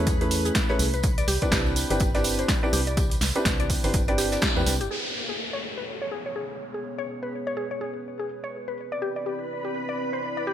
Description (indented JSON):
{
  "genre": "deep house",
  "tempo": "124 BPM",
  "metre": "4/4",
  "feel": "swing 59% on 16ths",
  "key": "unclear",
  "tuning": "A4 = 439 Hz",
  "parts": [
    { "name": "mallet-like synth pluck", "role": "arpeggios", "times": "0.0-10.5 s", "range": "G4 to D5", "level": "-32 LUFS", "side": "left 2 dB", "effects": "chorus, cassette tape, sidechain pumping, ping-pong delay" },
    { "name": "felt-muted upright piano", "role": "stabs", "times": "0.0-4.7 s", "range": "A3 to B4", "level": "-28 LUFS", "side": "right 1 dB", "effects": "sidechain pumping, ping-pong delay" },
    { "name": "organ-like FM bass", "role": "bass", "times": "0.0-4.9 s", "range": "G1 to E2", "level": "-28 LUFS", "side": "equal", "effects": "sidechain pumping" },
    { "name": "soft string machine", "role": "texture", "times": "0.0-4.9, 8.8-10.5 s", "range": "B4 to B5", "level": "-38 LUFS", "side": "right 1 dB", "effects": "ensemble chorus" },
    { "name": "damped 70s drum kit", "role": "drums", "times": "0.1-4.8 s", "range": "hi-hat, snare drum, tambourine", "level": "-38 LUFS", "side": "right 5 dB", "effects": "none" },
    { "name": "electronic kick drum", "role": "drums", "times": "0.1-4.5 s", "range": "none", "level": "-26 LUFS", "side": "equal", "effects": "none" },
    { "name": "punchy analog drum machine", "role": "drums", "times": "0.1-10.3 s", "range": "hi-hat, snare drum", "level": "-28 LUFS", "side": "equal", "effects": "low-pass filter on hats, low-pass filter on snare, low-pass filter on room" },
    { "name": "tambourine", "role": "percussion", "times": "0.1-4.9 s", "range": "none", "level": "-36 LUFS", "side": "right 4 dB", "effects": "none" },
    { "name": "dark analog pad", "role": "sustained chords", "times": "4.9-10.5 s", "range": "B3 to D5", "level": "-34 LUFS", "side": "equal", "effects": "chorus, sidechain pumping" },
    { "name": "downlifter", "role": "sound effects", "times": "4.9-8.8 s", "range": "none", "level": "-33 LUFS", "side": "left 1 dB", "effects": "none" }
  ],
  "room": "light reverb, studio ambience",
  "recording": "bright 1980s-style digital production",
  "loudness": "-24 LUFS",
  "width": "side -10 dB against mid",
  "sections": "0.0-4.9 A section; 4.9-10.5 B section",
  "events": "band accent 4.4; filter sweep on synth arpeggio sound 4.9-10.5",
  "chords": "0.0 Amaj9; 1.0 Cmaj9; 4.9 Amaj9; 8.8 Cmaj9"
}